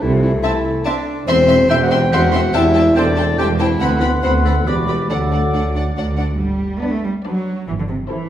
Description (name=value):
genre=cinematic, playful, whimsical film cue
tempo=142 BPM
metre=3/4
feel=straight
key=G major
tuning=A4 = 440 Hz
part: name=mellow clarinet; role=second line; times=0.0-6.0 s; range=E4 to G5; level=-20 LUFS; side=left 2 dB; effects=none
part: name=mellow bassoon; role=accompaniment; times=0.0-6.2 s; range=F#3 to D4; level=-24 LUFS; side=equal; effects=none
part: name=mellow French horn section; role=sustained chords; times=0.0-5.9 s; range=E3 to G4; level=-22 LUFS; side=left 1 dB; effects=none
part: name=mellow tuba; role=bass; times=0.0-6.3 s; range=E1 to D2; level=-24 LUFS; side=right 2 dB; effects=none
part: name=warm chamber cello section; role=bass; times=0.0-8.3 s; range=D2 to B3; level=-22 LUFS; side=right 1 dB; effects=none
part: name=warm studio double bass section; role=bass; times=0.0-8.0 s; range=E1 to D2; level=-22 LUFS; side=right 1 dB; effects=none
part: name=rich chamber violin section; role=melody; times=0.4-8.3 s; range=C5 to C6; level=-29 LUFS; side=left 2 dB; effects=none
part: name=dark chamber violin section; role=second line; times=0.4-8.3 s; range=A4 to G5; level=-28 LUFS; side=left 4 dB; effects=none
part: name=mellow large flute ensemble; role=second line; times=0.4-6.2 s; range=F#5 to C6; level=-29 LUFS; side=left 1 dB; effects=none
part: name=warm oboe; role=second line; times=0.4-6.2 s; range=D5 to A5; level=-26 LUFS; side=equal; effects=none
part: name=warm studio viola section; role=accompaniment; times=0.4-8.3 s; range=B3 to E4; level=-27 LUFS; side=equal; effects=none
room=wet recital hall reverb, RT60 1.4 s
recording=recorded in a church or concert hall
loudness=-14 LUFS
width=side -11 dB against mid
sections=0.0-6.4 A section; 6.4-8.3 B section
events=none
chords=0.0 Am/C; 1.3 C/E; 2.5 Am7/E; 3.8 D6; 4.7 Em7; 5.1 D; 6.4 G; 7.7 Am7/G